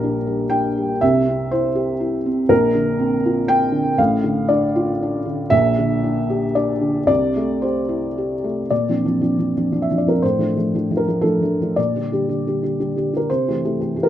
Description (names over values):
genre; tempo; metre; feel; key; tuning
neoclassical minimalist piano; 119 BPM; 3/4; rubato; G dorian; A4 = 440 Hz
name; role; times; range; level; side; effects
felt-muted upright piano; solo; 0.0-14.1 s; A1 to G5; -17 LUFS; equal; none
room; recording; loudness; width
light reverb, small room ambience; rough home demo mix; -17 LUFS; side -11 dB against mid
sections
0.0-8.7 A section; 8.7-14.1 B section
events
none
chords
0.0 Gm/Bb; 1.0 C; 2.5 Bbadd9; 4.0 Dm/A; 5.5 Gm/Bb; 7.1 C6; 8.7 Bbadd9; 10.2 Dm/A; 11.8 Gm/Bb; 13.3 C6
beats
0.02 0.52 | 1.02 1.51 2.01 | 2.50 2.99 3.48 | 3.98 4.49 5.01 | 5.51 6.03 6.55 | 7.08 7.63 8.17 | 8.71 9.22 9.72 | 10.23 10.74 11.24 | 11.77 12.28 12.78 | 13.28 13.78